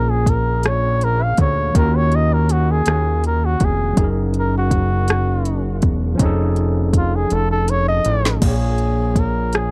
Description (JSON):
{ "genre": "slow six-eight R&B", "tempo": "54 BPM (dotted quarters)", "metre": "6/8", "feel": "straight", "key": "unclear", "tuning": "A4 = 440 Hz", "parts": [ { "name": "breathy flugelhorn", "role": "melody", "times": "0.0-9.7 s", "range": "F4 to E#5", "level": "-24 LUFS", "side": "equal", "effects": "tape echo" }, { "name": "overdriven tine electric piano", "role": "accompaniment", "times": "0.0-9.7 s", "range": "A#2 to E#5", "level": "-26 LUFS", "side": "equal", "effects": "none" }, { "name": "fat analog bass", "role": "bass", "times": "0.0-9.7 s", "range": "E1 to D#2", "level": "-21 LUFS", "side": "equal", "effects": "none" }, { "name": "smooth R&B drum kit", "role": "drums", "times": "0.3-9.7 s", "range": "crash cymbal, hi-hat, kick drum, rim click, snare drum", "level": "-20 LUFS", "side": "equal", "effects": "overdrive" } ], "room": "little or no reverb", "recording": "dry, close 1970s-style studio recording", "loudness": "-18 LUFS", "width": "mono", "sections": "0.0-8.4 A section; 8.4-9.7 B section", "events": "flugelhorn solo 0.0-8.4; drum fill 7.3-8.4", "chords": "0.0 A#m7; 1.7 D#m7; 4.0 F#69; 6.2 F7alt; 8.4 A#m7" }